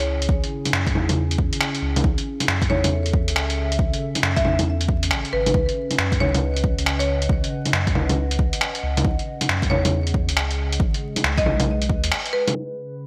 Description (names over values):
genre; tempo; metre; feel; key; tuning
future garage; 137 BPM; 4/4; swing 63% on 16ths; unclear; A4 = 441 Hz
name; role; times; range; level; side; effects
marimba with medium hard mallets; melody; 0.0-12.6 s; B4 to E5; -29 LUFS; equal; delay
warbly tape-like pad; sustained chords; 0.0-13.1 s; C#3 to G#5; -32 LUFS; equal; chorus, built-in reverb, sidechain pumping
warm sub bass; bass; 0.0-12.1 s; G#1 to F#2; -27 LUFS; equal; tube saturation, sidechain pumping
lo-fi sampler-style drum kit; drums; 0.0-12.5 s; bongos, finger snaps, hi-hat; -25 LUFS; equal; gated reverb
electronic kick drum; drums; 0.3-12.0 s; none; -26 LUFS; equal; overdrive
drifting glass-harmonics texture; texture; 12.7-13.1 s; B4; -41 LUFS; equal; chorus, built-in reverb
room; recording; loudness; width
light reverb; bright 1980s-style digital production, vinyl crackle, low-pass filter; -22 LUFS; mono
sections
0.0-12.6 A section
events
band accent 12.1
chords
0.0 C#m; 2.0 F#m7/C#; 5.5 G#m7/C#; 9.1 Emaj7/C#; 10.8 G#m7; 12.6 C#m